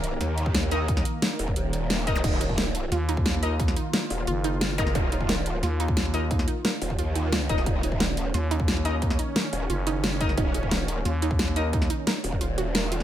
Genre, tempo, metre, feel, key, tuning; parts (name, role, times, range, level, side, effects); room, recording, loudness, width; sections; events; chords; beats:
dark technical drum and bass; 177 BPM; 4/4; straight; Eb minor; A4 = 443 Hz
sweeping resonant pad; sustained chords; 0.0-13.0 s; Eb3 to Bb4; -34 LUFS; right 1 dB; chorus, sidechain pumping
growl bass; bass; 0.0-13.0 s; Eb1 to Eb2; -28 LUFS; equal; chorus, overdrive
dubstep drum kit; drums; 0.0-13.0 s; crash cymbal, hi-hat, snare drum; -28 LUFS; equal; studio reverb
electronic kick drum; drums; 0.5-12.4 s; -27 LUFS; equal; studio reverb
orchestra-hit-like synth stab; stabs; 0.7-11.7 s; Eb4 to Eb5; -33 LUFS; left 3 dB; built-in reverb, digital delay
wide unison pluck; arpeggios; 2.2-13.0 s; Eb4 to Bb4; -34 LUFS; right 5 dB; sidechain pumping, digital delay
zap; sound effects; 2.2, 4.8-4.9 s; -36 LUFS; equal
growling FM bass; bass; 2.9-11.9 s; Gb1 to Eb2; -27 LUFS; equal
digital ambience; -23 LUFS; side -11 dB against mid
0.0-13.0 A section
kick drops out 12.4-13.0
0.0 Eb5
0.21 0.55 | 0.88 1.22 1.56 1.90 | 2.24 2.58 2.92 3.26 | 3.60 3.94 4.27 4.61 | 4.95 5.29 5.63 5.97 | 6.31 6.65 6.99 7.33 | 7.66 8.00 8.34 8.68 | 9.02 9.36 9.70 10.04 | 10.38 10.71 11.05 11.39 | 11.73 12.07 12.41 12.75